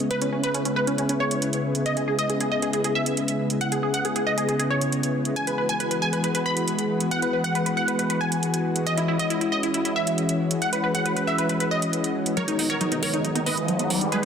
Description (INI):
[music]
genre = uplifting trance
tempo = 137 BPM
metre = 4/4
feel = straight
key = unclear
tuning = A4 = 443 Hz
[part]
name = lush unison pad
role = sustained chords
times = 0.0-14.2 s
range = C#3 to F#4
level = -25 LUFS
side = left 1 dB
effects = chorus, vintage 12-bit sampler grit
[part]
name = electronic hi-hat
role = drums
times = 0.0-14.2 s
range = none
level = -29 LUFS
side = right 3 dB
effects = high-pass filter on hats
[part]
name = wide unison pluck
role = melody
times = 0.1-14.2 s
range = C#4 to B5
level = -25 LUFS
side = equal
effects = phaser, tape echo
[part]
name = wide unison pluck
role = arpeggios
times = 12.4-14.2 s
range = F#3 to F#4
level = -30 LUFS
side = right 4 dB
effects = phaser, vintage 12-bit sampler grit, tape echo
[part]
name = riser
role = sound effects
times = 12.9-14.2 s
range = none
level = -29 LUFS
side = left 1 dB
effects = none
[part]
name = plucky analog bass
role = bass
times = 12.5-14.1 s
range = G#1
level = -47 LUFS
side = equal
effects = none
[sound]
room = moderate concert hall reverb, RT60 2.0 s, digital ambience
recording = dense, heavily limited modern master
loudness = -22 LUFS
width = side -7 dB against mid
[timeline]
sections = 0.0-12.4 A section; 12.4-14.2 B section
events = build-up 12.4-14.2; filter sweep on synth arpeggio sound 12.4-14.2; riser 12.9-14.2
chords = 0.0 C#m7; 5.4 Eadd9; 12.4 G#m7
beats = | 0.11 0.55 0.98 1.42 | 1.86 2.30 2.73 3.17 | 3.61 4.05 4.49 4.92 | 5.36 5.80 6.24 6.68 | 7.11 7.55 7.99 8.43 | 8.87 9.30 9.74 10.18 | 10.62 11.06 11.49 11.93 | 12.37 12.81 13.25 13.68 | 14.12